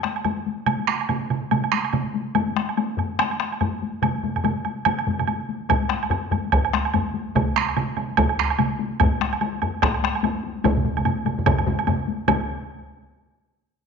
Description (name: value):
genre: japanese traditional, taiko drum ensemble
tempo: 145 BPM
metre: 4/4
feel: swing 60% on 16ths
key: none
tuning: none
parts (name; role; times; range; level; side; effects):
- taiko ensemble; percussion; 0.0-12.5 s; none; -27 LUFS; left 8 dB; none
- taiko ensemble; percussion; 0.0-12.7 s; none; -27 LUFS; left 5 dB; none
- woodblock; percussion; 0.2-12.5 s; none; -26 LUFS; right 8 dB; none
- taiko ensemble; percussion; 0.7-12.7 s; none; -25 LUFS; right 6 dB; none
- taiko ensemble; percussion; 5.7-12.5 s; none; -25 LUFS; equal; none
room: wet echo chamber reverb, RT60 1.4 s, small room ambience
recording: 1960s-style stereo with parts hard left and right, nothing above 7.6 kHz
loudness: -20 LUFS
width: side -6 dB against mid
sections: 0.0-12.3 A section; 12.3-13.9 B section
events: speeding up 0.0-13.9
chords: none